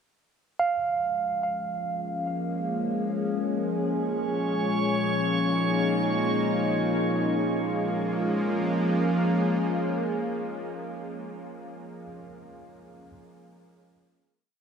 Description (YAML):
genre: ambient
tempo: free time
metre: none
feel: none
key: Bb minor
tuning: A4 = 440 Hz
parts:
  - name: evolving wavetable pad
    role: sustained chords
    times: 1.4-11.4 s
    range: Bb2 to Ab4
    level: -26 LUFS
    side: equal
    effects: chorus, built-in reverb
  - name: barky tine electric piano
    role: arpeggios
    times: 0.6-13.1 s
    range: F5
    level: -31 LUFS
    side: right 3 dB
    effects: ping-pong delay
  - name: bowed-like drone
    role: drone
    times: 5.1-11.4 s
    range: Bb3 to F4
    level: -34 LUFS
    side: left 1 dB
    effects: built-in reverb
  - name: drifting glass-harmonics texture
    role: texture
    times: 4.3-7.3 s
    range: Db5 to Db6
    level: -32 LUFS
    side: right 1 dB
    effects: chorus, built-in reverb
room: wet huge ambient reverb, RT60 8.4 s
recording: cassette tape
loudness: -24 LUFS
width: side -6 dB against mid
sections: 0.6-7.3 A section; 7.3-10.6 final chord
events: fade-out on tine electric piano 0.6-7.3; filter sweep on ambient pad 0.6-7.3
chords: 0.6 Bbm7; 3.9 Dbadd9/Bb; 7.3 Bbm7